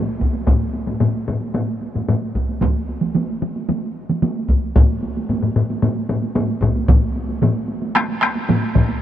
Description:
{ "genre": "japanese traditional, taiko drum ensemble", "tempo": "112 BPM", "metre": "4/4", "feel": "straight", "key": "none", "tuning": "none", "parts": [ { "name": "solo taiko drums", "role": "percussion", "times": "0.2-9.0 s", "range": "none", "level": "-24 LUFS", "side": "right 3 dB", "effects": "none" }, { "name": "taiko ensemble", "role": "percussion", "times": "0.2-8.9 s", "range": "none", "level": "-17 LUFS", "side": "equal", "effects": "none" }, { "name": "taiko ensemble", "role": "percussion", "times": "0.5-8.9 s", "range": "none", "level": "-20 LUFS", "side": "left 3 dB", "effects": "none" }, { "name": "taiko ensemble", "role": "percussion", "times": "2.6-8.9 s", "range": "none", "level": "-23 LUFS", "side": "right 3 dB", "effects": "none" } ], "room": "light reverb", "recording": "dark, warm production", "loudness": "-17 LUFS", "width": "side -11 dB against mid", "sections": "0.5-9.0 A section", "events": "none", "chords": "none" }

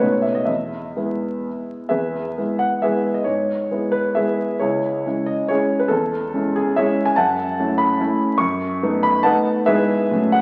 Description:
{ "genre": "classical, romantic triple-time dance for piano with dotted rhythms", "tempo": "119-156 BPM", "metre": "3/4", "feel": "rubato", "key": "E major", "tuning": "A4 = 439 Hz", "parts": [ { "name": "warm concert grand piano", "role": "solo", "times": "0.0-10.4 s", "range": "C#2 to C#6", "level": "-20 LUFS", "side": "equal", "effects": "none" } ], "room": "wet scoring stage reverb, RT60 1.7 s", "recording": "very old 78 rpm record, vinyl crackle", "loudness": "-20 LUFS", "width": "mono", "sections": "0.0-1.9 A section; 1.9-10.4 B section", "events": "none", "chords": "0.0 B7; 0.5 E; 3.3 E/G#; 4.6 C#m; 5.9 C#m/E; 7.2 F#m7; 8.4 B7/F#; 9.7 E/G#" }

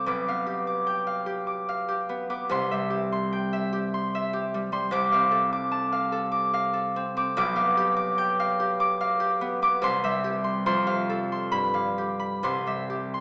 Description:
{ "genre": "classical, solo harp piece", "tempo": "64-76 BPM", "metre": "3/4", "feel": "rubato", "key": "C major", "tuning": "A4 = 440 Hz", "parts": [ { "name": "concert harp", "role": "solo", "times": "0.0-13.2 s", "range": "B1 to D6", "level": "-26 LUFS", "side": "equal", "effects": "none" } ], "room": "wet recital hall reverb, RT60 1.5 s", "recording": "heard from further back in the room, small speaker sound", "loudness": "-26 LUFS", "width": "mono", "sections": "0.0-13.2 A section", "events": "none", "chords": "0.1 G7/B; 2.5 C; 4.9 Dm7/C; 7.4 G7/B; 9.8 C; 10.7 F; 11.5 G7; 12.4 C" }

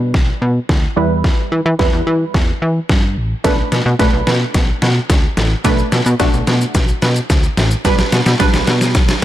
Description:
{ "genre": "dance-pop", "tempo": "109 BPM", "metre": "4/4", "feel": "straight", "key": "B minor", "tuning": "A4 = 439 Hz", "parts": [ { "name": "punchy chord stab", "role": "accompaniment", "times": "0.0-9.2 s", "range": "G3 to B4", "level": "-20 LUFS", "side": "right 2 dB", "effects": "chorus, sidechain pumping, low-pass filter" }, { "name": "plucky analog bass", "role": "bass", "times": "0.0-9.2 s", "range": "A1 to E3", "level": "-16 LUFS", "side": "equal", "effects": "sidechain pumping" }, { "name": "pop drum kit", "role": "drums", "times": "0.1-9.2 s", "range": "hi-hat, kick drum, shaker, snare drum", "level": "-15 LUFS", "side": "equal", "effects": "overdrive" } ], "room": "digital ambience", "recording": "dark, warm production", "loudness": "-12 LUFS", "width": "side -13 dB against mid", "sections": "0.0-9.2 A section", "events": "build-up 0.0-9.2; drum fill 0.0-9.2; filter sweep on synth stab 0.0-9.2", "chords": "0.0 G/B; 1.0 Em; 3.4 Bm7; 7.8 G/B" }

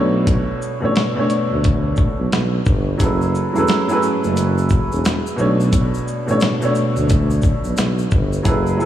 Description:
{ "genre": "hip hop, boom-bap hip-hop", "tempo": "88 BPM", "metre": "4/4", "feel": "swing 62% on 16ths", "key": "unclear", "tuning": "A4 = 440 Hz", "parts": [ { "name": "warm upright piano", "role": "accompaniment", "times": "0.0-8.9 s", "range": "B2 to C#5", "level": "-19 LUFS", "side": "right 1 dB", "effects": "cassette tape, high-pass filter, low-pass filter" }, { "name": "breathy tuba", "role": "bass", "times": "0.0-8.9 s", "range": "E1 to D2", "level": "-20 LUFS", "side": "equal", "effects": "none" }, { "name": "dusty soul sampler-style drum kit", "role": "drums", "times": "0.3-8.9 s", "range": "hi-hat, kick drum, shaker, snare drum", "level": "-20 LUFS", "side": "equal", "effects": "none" }, { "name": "tube shaker", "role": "percussion", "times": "3.0-8.8 s", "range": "none", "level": "-38 LUFS", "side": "left 6 dB", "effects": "none" } ], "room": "moderate cathedral reverb, RT60 5.8 s", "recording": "dreamy mix soaked in reverb, small room ambience", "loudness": "-15 LUFS", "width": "side -12 dB against mid", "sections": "0.0-8.9 A section", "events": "none", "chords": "0.0 Bm9; 3.0 F#m11; 5.4 Bm9" }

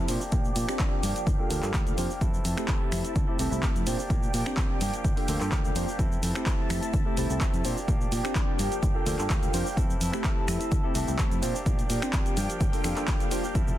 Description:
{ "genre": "filtered disco house", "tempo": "127 BPM", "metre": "4/4", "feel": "straight", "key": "unclear", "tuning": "A4 = 440 Hz", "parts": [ { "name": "bell-like tine electric piano", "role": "accompaniment", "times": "0.0-13.4 s", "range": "A3 to C5", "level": "-33 LUFS", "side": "equal", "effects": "phaser, sidechain pumping, low-pass filter" }, { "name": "string machine, full ensemble", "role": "sustained chords", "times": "0.0-13.8 s", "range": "F3 to A5", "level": "-36 LUFS", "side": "right 1 dB", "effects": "phaser, ensemble chorus, sidechain pumping, low-pass filter" }, { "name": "direct-recorded clean electric guitar", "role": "riff", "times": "0.0-13.8 s", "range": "E3 to A4", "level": "-36 LUFS", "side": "equal", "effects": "vintage 12-bit sampler grit, sidechain pumping, low-pass filter" }, { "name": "fingered electric bass", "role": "bass", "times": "0.0-13.7 s", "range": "G1 to D3", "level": "-31 LUFS", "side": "equal", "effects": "sidechain pumping, low-pass filter" }, { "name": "punchy analog drum machine", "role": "drums", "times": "0.1-13.8 s", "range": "cabasa, finger snaps, handclaps, hi-hat", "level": "-34 LUFS", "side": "equal", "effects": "none" }, { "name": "electronic kick drum", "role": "drums", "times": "0.3-13.7 s", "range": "none", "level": "-28 LUFS", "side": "equal", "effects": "none" }, { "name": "tube shaker and congas", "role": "percussion", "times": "13.6-13.8 s", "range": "none", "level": "-34 LUFS", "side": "right 3 dB", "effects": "sidechain pumping on perc, low-pass filter on perc" } ], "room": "little or no reverb", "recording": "dense, heavily limited modern master", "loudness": "-24 LUFS", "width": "side -13 dB against mid", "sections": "0.0-13.8 A section", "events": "filter sweep 0.0-13.8", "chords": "0.1 Bb6; 1.0 Gm7; 2.2 Fmaj7; 3.9 Bb6; 4.8 Gm7; 6.0 Fmaj7; 7.6 Bb6; 8.6 Gm7; 9.8 Fmaj7; 11.4 Bb6; 12.4 Gm7" }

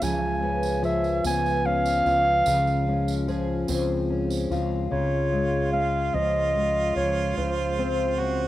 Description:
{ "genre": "acoustic folk duo or small band", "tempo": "49 BPM (dotted quarters)", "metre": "6/8", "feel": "straight", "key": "Db major", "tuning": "A4 = 439 Hz", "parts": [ { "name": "mellow clarinet", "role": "melody", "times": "0.0-8.5 s", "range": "C5 to Ab5", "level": "-25 LUFS", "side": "right 1 dB", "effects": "cassette tape" }, { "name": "fingerpicked steel-string acoustic guitar", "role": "accompaniment", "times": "0.0-8.5 s", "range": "Db3 to F4", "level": "-27 LUFS", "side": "left 4 dB", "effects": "cassette tape" }, { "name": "fingerpicked twelve-string acoustic guitar", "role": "arpeggios", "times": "0.0-5.0 s", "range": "F3 to Ab4", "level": "-34 LUFS", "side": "right 6 dB", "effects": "cassette tape" }, { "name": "mellow fretless electric bass", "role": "bass", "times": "0.0-8.5 s", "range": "Db2", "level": "-29 LUFS", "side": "right 1 dB", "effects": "none" }, { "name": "tambourine", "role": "percussion", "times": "0.0-4.6 s", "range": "none", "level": "-40 LUFS", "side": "right 8 dB", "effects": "none" }, { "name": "warm harmonica", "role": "second line", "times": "4.9-8.5 s", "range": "F4 to Gb4", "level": "-31 LUFS", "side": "right 7 dB", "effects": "cassette tape" } ], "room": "moderate lush hall reverb, RT60 2.9 s", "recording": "home recording on cassette", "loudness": "-22 LUFS", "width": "side -14 dB against mid", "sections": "0.0-4.9 A section; 4.9-8.5 B section", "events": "clarinet solo 0.0-4.9", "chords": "0.0 Db7; 2.5 Dbmaj7" }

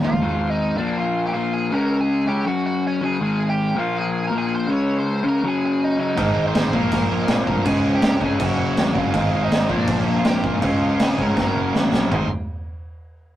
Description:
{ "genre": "punk rock", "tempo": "162 BPM", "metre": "4/4", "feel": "straight", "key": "Ab major", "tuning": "A4 = 440 Hz", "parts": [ { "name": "biting lead guitar", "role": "melody", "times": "0.0-12.3 s", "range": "Db4 to Db6", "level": "-26 LUFS", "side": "right 2 dB", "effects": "overdrive" }, { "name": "crunchy overdriven guitar", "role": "riff", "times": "0.0-12.3 s", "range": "Gb2 to Db4", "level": "-21 LUFS", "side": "left 2 dB", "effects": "none" }, { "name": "tight distorted guitar", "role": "riff", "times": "0.0-0.2, 6.2-12.3 s", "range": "Gb2 to Eb4", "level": "-27 LUFS", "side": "right 6 dB", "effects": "distortion" }, { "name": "fuzz picked electric bass", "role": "bass", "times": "0.0-0.2, 6.2-12.3 s", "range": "Gb1 to Ab2", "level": "-27 LUFS", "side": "right 1 dB", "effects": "overdrive" }, { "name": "raw garage drum kit", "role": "drums", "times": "0.0-0.1, 6.2-12.2 s", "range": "crash cymbal, kick drum, snare drum, toms", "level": "-22 LUFS", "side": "right 1 dB", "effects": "none" } ], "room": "moderate booth ambience, RT60 0.2 s", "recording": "rough rehearsal-room recording, tube saturation", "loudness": "-18 LUFS", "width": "side -13 dB against mid", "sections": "0.2-12.1 A section; 12.1-13.4 B section", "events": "drum fill 0.0, 11.4-12.1", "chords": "0.2 Ab5; 0.8 Bb; 1.7 Db5; 2.5 Gb5; 3.2 Ab5; 3.8 Bb5; 4.7 Db5; 5.4 Gb5; 6.2 Ab; 6.7 Bb; 7.7 Db; 8.4 Gb; 9.1 Ab; 9.7 Bb; 10.6 Db; 11.4 Gb; 12.1 Ab5" }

